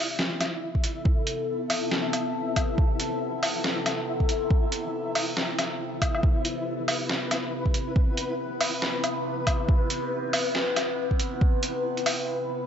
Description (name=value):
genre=deep dubstep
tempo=139 BPM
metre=4/4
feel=swing 60% on 16ths, half-time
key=A minor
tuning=A4 = 442 Hz
part: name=overtone-sweeping drone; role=sustained chords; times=0.0-12.7 s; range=C3 to B4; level=-30 LUFS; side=left 2 dB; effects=chorus, built-in reverb
part: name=flickering grainy texture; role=texture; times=0.0-12.3 s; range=E4 to E5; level=-34 LUFS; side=left 1 dB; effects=built-in reverb
part: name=trip hop sampler-style drum kit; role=drums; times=0.2-12.2 s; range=hi-hat, snare drum, woodblock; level=-28 LUFS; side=equal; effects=overdrive, high-pass filter on hats, high-pass filter on perc, high-pass filter on snare, high-pass filter on room
part: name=electronic kick drum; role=drums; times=0.7-11.5 s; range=none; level=-23 LUFS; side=equal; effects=none
room=light reverb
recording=nothing above 7.8 kHz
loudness=-24 LUFS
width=side -8 dB against mid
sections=0.0-12.7 A section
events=build-up 0.0-12.7; break 12.3-12.7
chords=0.0 Amadd9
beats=0.19 0.62 | 1.05 1.49 1.92 2.35 | 2.78 3.21 3.64 4.08 | 4.51 4.94 5.37 5.80 | 6.23 6.67 7.10 7.53 | 7.96 8.39 8.82 9.26 | 9.69 10.12 10.55 10.98 | 11.41 11.85 12.28